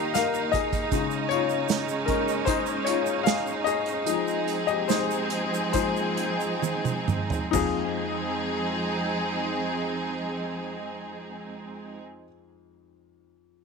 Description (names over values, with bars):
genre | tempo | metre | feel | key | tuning
pop ballad | 64-78 BPM | 4/4 | straight | F minor | A4 = 440 Hz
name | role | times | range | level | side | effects
warm baby grand piano | accompaniment | 0.0-13.6 s | F2 to F5 | -28 LUFS | left 11 dB | none
rich studio string section | sustained chords | 0.0-12.0 s | Eb3 to Ab4 | -28 LUFS | right 4 dB | none
unplugged drum kit | drums | 0.1-7.8 s | hi-hat, kick drum, snare drum, splash cymbal, toms | -28 LUFS | right 6 dB | none
egg shaker | percussion | 0.1-8.0 s | none | -40 LUFS | right 21 dB | none
room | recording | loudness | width
light reverb, studio reverb | 1960s-style stereo with parts hard left and right | -24 LUFS | side -4 dB against mid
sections
0.0-7.5 A section; 7.5-11.3 B section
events
grand piano solo 0.0-7.5; slowing down 0.9-7.5; drum fill 6.6-7.5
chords
0.0 Eb; 0.9 Dbsus2; 4.1 Fm7